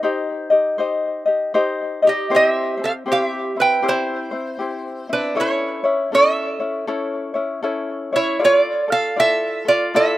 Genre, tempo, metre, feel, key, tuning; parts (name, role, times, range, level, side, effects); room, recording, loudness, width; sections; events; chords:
Hawaiian; 79 BPM; 4/4; swing 63% on 8ths; C major; A4 = 440 Hz
lap resonator guitar; melody; 0.0-10.2 s; D4 to G5; -17 LUFS; right 2 dB; slapback echo
ukulele; accompaniment; 0.0-10.2 s; C4 to Eb5; -21 LUFS; left 3 dB; slapback echo
little or no reverb; recorded outdoors, with no room sound; -17 LUFS; side -15 dB against mid
0.0-2.3 A section; 2.3-10.2 B section
0.0 Cm; 2.3 C; 5.4 A; 8.4 Dmadd9